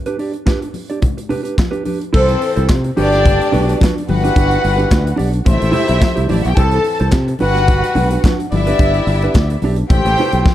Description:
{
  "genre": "disco",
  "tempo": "108 BPM",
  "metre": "4/4",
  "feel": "straight",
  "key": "unclear",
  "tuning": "A4 = 440 Hz",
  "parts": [
    { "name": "mellow electric guitar", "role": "accompaniment", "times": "0.1-10.5 s", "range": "D4 to D5", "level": "-22 LUFS", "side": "right 4 dB", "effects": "none" },
    { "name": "modern studio drum kit", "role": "drums", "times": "0.1-10.5 s", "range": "crash cymbal, handclaps, hi-hat, kick drum, snare drum", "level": "-16 LUFS", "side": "equal", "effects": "none" },
    { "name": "congas", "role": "percussion", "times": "0.5-10.5 s", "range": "none", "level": "-25 LUFS", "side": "left 4 dB", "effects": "none" },
    { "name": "warm symphonic violin section", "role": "second line", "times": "2.1-10.5 s", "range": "C4 to A5", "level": "-19 LUFS", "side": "left 1 dB", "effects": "none" },
    { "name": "warm horn section", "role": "stabs", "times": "2.1-10.5 s", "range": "D3 to D5", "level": "-21 LUFS", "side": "left 3 dB", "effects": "none" },
    { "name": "fingered electric bass", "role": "bass", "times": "2.1-10.4 s", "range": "G1 to C3", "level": "-16 LUFS", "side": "equal", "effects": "none" }
  ],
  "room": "light reverb, studio ambience",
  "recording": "dark, warm production",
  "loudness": "-12 LUFS",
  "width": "side -13 dB against mid",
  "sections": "0.0-2.1 A section; 2.1-10.5 B section",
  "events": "none",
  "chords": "0.0 G/D; 2.1 C6; 3.0 Gmaj7; 4.1 Em7/G; 5.5 Am7; 6.6 C6; 7.4 Gmaj7; 8.5 Em7/G; 9.9 Am7",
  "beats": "0.47 1.03 1.58 | 2.14 2.69 3.25 3.81 | 4.36 4.91 5.47 6.02 | 6.58 7.13 7.69 8.24 | 8.79 9.35 9.90 10.46"
}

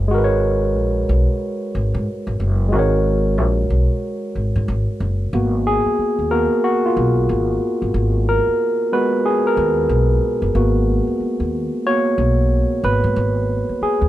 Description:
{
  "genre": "R&B, neo-soul",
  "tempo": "92 BPM",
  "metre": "4/4",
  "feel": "swing 61% on 16ths",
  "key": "G# minor",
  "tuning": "A4 = 440 Hz",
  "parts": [
    { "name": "barky tine electric piano", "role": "accompaniment", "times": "0.0-14.1 s", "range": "G#3 to C#5", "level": "-18 LUFS", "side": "equal", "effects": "overdrive" },
    { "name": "upright bass", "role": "bass", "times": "0.0-14.1 s", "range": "F#1 to G#2", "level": "-19 LUFS", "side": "equal", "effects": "none" }
  ],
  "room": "little or no reverb",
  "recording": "dry, close 1970s-style studio recording",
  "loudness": "-16 LUFS",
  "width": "side -14 dB against mid",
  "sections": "0.0-5.3 A section; 5.3-14.1 B section",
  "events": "tine electric piano solo 5.3-14.1",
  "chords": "0.0 G#m9",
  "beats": "| 0.11 0.76 1.41 2.06 | 2.72 3.37 4.02 4.67 | 5.33 5.98 6.63 7.28 | 7.93 8.59 9.24 9.89 | 10.54 11.20 11.85 12.50 | 13.15 13.80"
}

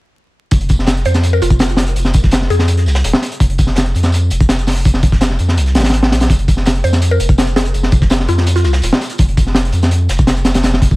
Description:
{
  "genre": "drum and bass, jungle",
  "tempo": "166 BPM",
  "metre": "4/4",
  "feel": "straight",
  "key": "F minor",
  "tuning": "A4 = 442 Hz",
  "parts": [
    { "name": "saturated sub bass", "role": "bass", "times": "0.5-11.0 s", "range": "Eb1 to F2", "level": "-14 LUFS", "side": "equal", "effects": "none" },
    { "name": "crunchy breakbeat drum kit", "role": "drums", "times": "0.5-11.0 s", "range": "hi-hat, kick drum, snare drum", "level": "-13 LUFS", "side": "equal", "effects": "none" },
    { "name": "crunchy breakbeat drum kit", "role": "drums", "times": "0.5-10.9 s", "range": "hi-hat, snare drum, tambourine", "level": "-28 LUFS", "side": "right 1 dB", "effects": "high-pass filter on hats, high-pass filter on snare, high-pass filter on perc, high-pass filter on room" },
    { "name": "mallet-like synth pluck", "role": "melody", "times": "1.1-3.0, 6.8-8.7 s", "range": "F4 to C5", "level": "-21 LUFS", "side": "equal", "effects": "chorus, dub echo" }
  ],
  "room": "studio ambience",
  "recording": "echo-heavy mix, vinyl crackle",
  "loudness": "-11 LUFS",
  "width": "side -20 dB against mid",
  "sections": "0.5-11.0 A section",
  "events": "drop 0.5-11.0",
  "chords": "none",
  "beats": "| 0.52 0.88 1.24 1.60 | 1.96 2.32 2.69 3.05 | 3.41 3.77 4.13 4.49 | 4.85 5.21 5.58 5.94 | 6.30 6.66 7.02 7.38 | 7.75 8.11 8.47 8.83 | 9.19 9.55 9.91 10.28 | 10.64"
}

